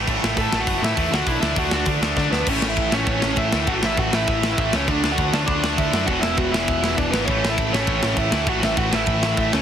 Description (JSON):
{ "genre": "punk rock", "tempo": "200 BPM", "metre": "4/4", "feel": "straight", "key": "unclear", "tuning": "A4 = 440 Hz", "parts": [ { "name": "distorted electric guitar", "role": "riff", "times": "0.0-9.6 s", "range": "E2 to D4", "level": "-26 LUFS", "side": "right 13 dB", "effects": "overdrive" }, { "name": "tight distorted guitar", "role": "riff", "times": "0.0-9.6 s", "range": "E2 to D4", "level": "-26 LUFS", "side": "left 16 dB", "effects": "distortion" }, { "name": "growling picked electric bass", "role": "bass", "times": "0.0-9.6 s", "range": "E1 to D3", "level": "-26 LUFS", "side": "equal", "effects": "overdrive" }, { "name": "tight metal drum kit", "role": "drums", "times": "0.1-9.6 s", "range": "crash cymbal, hi-hat, kick drum, snare drum", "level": "-24 LUFS", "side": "equal", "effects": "none" }, { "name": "bluesy overdriven lead guitar", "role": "melody", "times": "0.4-9.6 s", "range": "B3 to A5", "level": "-24 LUFS", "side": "right 1 dB", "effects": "distortion, tape echo" } ], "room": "light reverb", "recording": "heavily compressed radio sound", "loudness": "-18 LUFS", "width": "side -9 dB against mid", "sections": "0.0-2.5 A section; 2.5-9.6 B section", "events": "drum fill 2.2-2.5", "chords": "0.0 A5; 1.1 D; 2.5 A; 4.9 D; 6.1 E5; 7.3 A" }